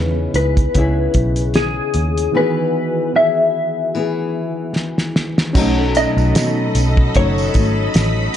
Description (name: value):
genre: indie pop, bedroom pop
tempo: 75 BPM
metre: 4/4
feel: swing 55% on 16ths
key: unclear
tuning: A4 = 440 Hz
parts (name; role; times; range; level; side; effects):
- mellow electric guitar; melody; 0.0-8.4 s; G#4 to E5; -19 LUFS; left 2 dB; analog chorus, slapback echo
- nylon-string guitar; accompaniment; 0.0-8.4 s; B2 to G#4; -22 LUFS; left 4 dB; lush chorus, warbly pitch drift
- soft electric-piano-like synth keys; accompaniment; 0.0-8.4 s; D#3 to A4; -25 LUFS; right 4 dB; chorus, phaser, cassette tape
- vintage muted picked electric bass; bass; 0.0-8.3 s; F#1 to B2; -18 LUFS; equal; none
- cloth-damped thuddy drum kit; drums; 0.3-8.4 s; crash cymbal, hi-hat, kick drum, snare drum; -18 LUFS; equal; none
- string machine, full ensemble; sustained chords; 5.5-8.4 s; A4 to B5; -24 LUFS; left 1 dB; ensemble chorus
- tambourine; percussion; 5.6-8.2 s; none; -33 LUFS; right 6 dB; none
room: light reverb, small room ambience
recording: dark, warm production, nothing above 10.7 kHz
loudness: -14 LUFS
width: side -10 dB against mid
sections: 0.0-5.6 A section; 5.6-8.4 B section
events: drum fill 4.8-5.6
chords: 0.0 C#m7; 2.3 Emaj7; 5.6 B7